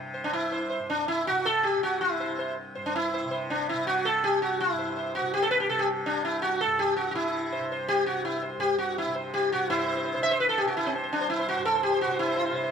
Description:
indian classical, Hindustani; 165 BPM; 7/4; straight; C raga yaman; A4 = 441 Hz
tanpura; drone; 0.0-12.7 s; C2 to C3; -37 LUFS; left 3 dB
sitar; melody; 0.1-12.7 s; C4 to E5; -25 LUFS; equal
light reverb; close, detailed microphones; -24 LUFS; side -7 dB against mid
0.0-9.7 A section; 9.7-12.7 B section
speeding up 0.0-12.7
0.15 0.53 0.90 1.27 1.65 | 2.02 2.39 2.76 3.13 3.50 3.87 4.23 | 4.60 4.97 5.33 5.70 6.07 6.43 6.79 | 7.16 7.52 7.88 8.25 8.61 8.97 9.33 | 9.69 10.05 10.40 10.76 11.12 11.48 11.83 | 12.19 12.54

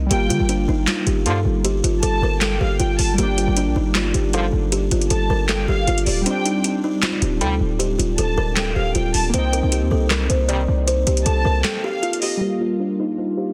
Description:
hip hop, trap; 156 BPM; 4/4; half-time; G minor; A4 = 439 Hz
warbly lo-fi synth keys; accompaniment; 0.0-13.5 s; G3 to F4; -28 LUFS; equal; chorus, low-pass filter
hard-hitting 808-style bass; bass; 0.0-11.6 s; D1 to D3; -23 LUFS; equal
buzzing kalimba; melody; 0.1-13.5 s; D4 to D5; -26 LUFS; equal; low-pass filter, delay
dark studio violin section; second line; 0.1-12.4 s; D5 to A5; -29 LUFS; equal; delay
booming analog drum machine; drums; 0.1-12.3 s; handclaps, hi-hat, snare drum; -26 LUFS; equal; vintage 12-bit sampler grit
bright brass ensemble; stabs; 1.3-1.4, 4.3-4.5, 7.4-7.5, 10.5-10.6 s; Bb2 to G3; -28 LUFS; equal
small room ambience; dense, heavily limited modern master; -20 LUFS; mono
0.1-12.4 A section; 12.4-13.5 B section
kick muted 6.3-7.0; break 11.6-12.4; filter sweep 12.4-13.5
0.1 Gm7; 6.3 D7sus4; 9.3 Cm7; 12.4 Gm7
| 0.11 0.49 0.88 1.26 | 1.64 2.03 2.41 2.80 | 3.18 3.57 3.95 4.34 | 4.72 5.11 5.49 5.88 | 6.26 6.64 7.03 7.41 | 7.80 8.18 8.57 8.95 | 9.34 9.72 10.11 10.49 | 10.88 11.26 11.64 12.03 | 12.41 12.80 13.18

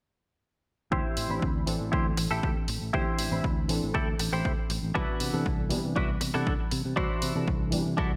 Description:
nu-disco, nu disco; 119 BPM; 4/4; straight; D mixolydian; A4 = 439 Hz
reed electric piano; accompaniment; 0.9-8.2 s; E3 to B5; -35 LUFS; equal; analog chorus, sidechain pumping, digital delay
direct-recorded clean electric guitar; riff; 0.9-8.1 s; D4 to C5; -35 LUFS; equal; analog chorus, low-pass filter, digital delay
fingered electric bass; bass; 0.9-8.2 s; A1 to C3; -36 LUFS; equal
electronic kick drum; drums; 0.9-8.1 s; -33 LUFS; equal; studio reverb
electronic hi-hat; drums; 1.2-7.8 s; -38 LUFS; equal; studio reverb
moderate lush hall reverb, RT60 1.9 s; bright 1980s-style digital production; -29 LUFS; mono
0.9-8.2 A section
0.9 D9sus4; 5.0 Cmaj9#11
| 0.92 1.42 1.93 2.43 | 2.94 3.44 3.94 4.45 | 4.95 5.46 5.96 6.46 | 6.97 7.47 7.98

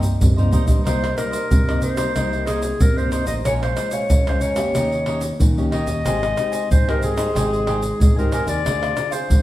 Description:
samba and choro; 92 BPM; 4/4; straight; C minor; A4 = 440 Hz
warm clarinet; melody; 0.0-9.4 s; C4 to Eb5; -24 LUFS; left 1 dB
cavaquinho; accompaniment; 0.0-9.4 s; D4 to Ab5; -31 LUFS; right 4 dB
nylon-string guitar; accompaniment; 0.0-9.4 s; F2 to Ab4; -27 LUFS; left 2 dB
modern bright fingered electric bass; bass; 0.0-9.4 s; Ab1 to Eb3; -26 LUFS; equal
surdo, tube shaker, pandeiro and tamborim; percussion; 0.0-9.4 s; -19 LUFS; equal
wet large studio reverb, RT60 1.1 s; band playing live in one room; -17 LUFS; side -15 dB against mid
0.9-9.4 A section
drum fill 0.0-0.9
0.0 Cm7; 3.5 Bbm7; 4.8 Eb7; 6.1 Abmaj7; 8.7 Dm7b5
0.21 | 0.86 1.51 2.16 2.81 | 3.46 4.11 4.76 5.41 | 6.06 6.71 7.36 8.01 | 8.66 9.31

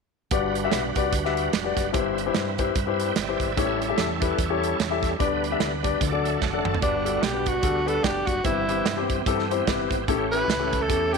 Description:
uptempo gospel; 147 BPM; 4/4; swing 58% on 8ths; G major; A4 = 440 Hz
warm concert grand piano; accompaniment; 0.3-11.2 s; G2 to E5; -26 LUFS; left 12 dB
bright tonewheel organ; sustained chords; 0.3-11.2 s; E3 to A5; -30 LUFS; right 10 dB; overdrive, chorus vibrato, fast rotary speaker
fingered electric bass; bass; 0.3-11.2 s; F1 to G2; -33 LUFS; right 1 dB
modern studio drum kit; drums; 0.3-11.2 s; hi-hat, kick drum, snare drum, toms; -27 LUFS; right 4 dB
warm tenor saxophone; melody; 6.8-11.2 s; D4 to B4; -26 LUFS; right 1 dB
moderate echo chamber reverb, RT60 1.9 s, studio reverb; 1960s-style stereo with parts hard left and right; -22 LUFS; side -4 dB against mid
0.3-6.8 A section; 6.8-11.2 B section
tonewheel organ fill 2.8-3.6, 5.6-6.8; drum fill 6.4-6.8
0.3 Gmaj7; 1.9 Cmaj7/G; 3.6 A7; 5.2 G/D; 6.0 D; 6.8 Gmaj7; 8.5 Cmaj7/G; 10.1 A7
| 0.32 0.72 1.13 1.53 | 1.94 2.35 2.76 3.16 | 3.57 3.98 4.38 4.79 | 5.20 5.60 6.01 6.42 | 6.83 7.23 7.64 8.05 | 8.46 8.86 9.27 9.68 | 10.08 10.49 10.90

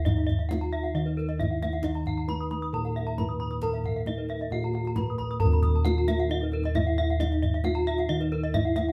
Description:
Balinese gamelan; 134 BPM; 4/4; straight; Eb pelog; A4 = 440 Hz
gamelan-type bronze metallophone; melody; 0.0-8.9 s; Eb4 to Cb5-40c; -34 LUFS; equal
gamelan-type bronze metallophone; arpeggios; 0.0-8.9 s; Cb5-40c to Eb6; -42 LUFS; equal
gamelan-type bossed gongs; bass; 0.0-8.9 s; Eb2 to Bb4-45c; -30 LUFS; equal
gamelan-type bronze metallophone; arpeggios; 0.1-8.9 s; Bb4-45c to Eb6; -37 LUFS; equal
kendang; percussion; 0.1-8.9 s; -34 LUFS; equal
moderate studio reverb, RT60 0.7 s; band playing live in one room; -27 LUFS; mono
0.0-8.9 A section
| 0.06 0.50 0.95 1.39 | 1.84 2.29 2.73 3.18 | 3.62 4.07 4.52 4.96 | 5.41 5.85 6.30 6.75 | 7.19 7.64 8.08 8.53

